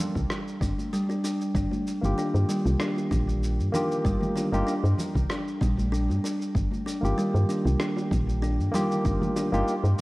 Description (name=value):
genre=organic downtempo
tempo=96 BPM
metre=4/4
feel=swing 54% on 16ths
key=unclear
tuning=A4 = 440 Hz
part: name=woody FM bass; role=bass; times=0.2-9.9 s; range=G1 to G2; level=-25 LUFS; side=equal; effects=sidechain pumping
part: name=electronic kick drum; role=drums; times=0.2-9.2 s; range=none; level=-30 LUFS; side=equal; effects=overdrive
part: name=electronic shaker and rim click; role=drums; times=0.2-10.0 s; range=none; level=-38 LUFS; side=equal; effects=none
part: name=congas and bongos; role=percussion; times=0.2-10.0 s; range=none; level=-36 LUFS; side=equal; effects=none
part: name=kalimba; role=arpeggios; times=0.6-10.0 s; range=G3 to D4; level=-29 LUFS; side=equal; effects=tape echo
part: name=barky tine electric piano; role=accompaniment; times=2.0-9.7 s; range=Eb3 to G4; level=-30 LUFS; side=equal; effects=overdrive, vintage 12-bit sampler grit, sidechain pumping, tape echo, shimmer reverb
room=moderate echo chamber reverb, RT60 2.3 s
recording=worn, warbling old tape, cassette tape, warbly pitch drift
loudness=-24 LUFS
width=side -20 dB against mid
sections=0.0-10.0 A section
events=filter sweep on tine electric piano 0.0-10.0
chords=0.0 G5; 1.5 Ebadd9/G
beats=0.30 0.92 | 1.55 2.17 2.80 3.42 | 4.05 4.67 5.30 5.92 | 6.55 7.17 7.80 8.42 | 9.05 9.67